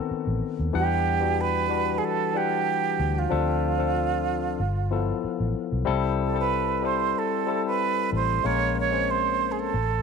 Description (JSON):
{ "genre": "soul", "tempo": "94 BPM", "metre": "4/4", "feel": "straight", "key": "unclear", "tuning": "A4 = 444 Hz", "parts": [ { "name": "barky tine electric piano", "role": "accompaniment", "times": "0.0-9.8 s", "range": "D#3 to F#5", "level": "-27 LUFS", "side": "left 12 dB", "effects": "overdrive" }, { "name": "vintage muted fingered electric bass", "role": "bass", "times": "0.1-10.0 s", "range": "G1 to E2", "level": "-28 LUFS", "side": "left 1 dB", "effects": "none" }, { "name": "breathy concert flute", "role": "melody", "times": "0.8-10.0 s", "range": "F4 to Db5", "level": "-26 LUFS", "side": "right 12 dB", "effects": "tape echo" } ], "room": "light reverb, studio reverb", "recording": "1960s-style stereo with parts hard left and right", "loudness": "-23 LUFS", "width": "side -5 dB against mid", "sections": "0.0-10.0 A section", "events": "none", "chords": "0.0 B7b9; 0.7 Em9; 3.3 Dm7; 4.6 G13; 5.9 C6; 8.4 Bbm9" }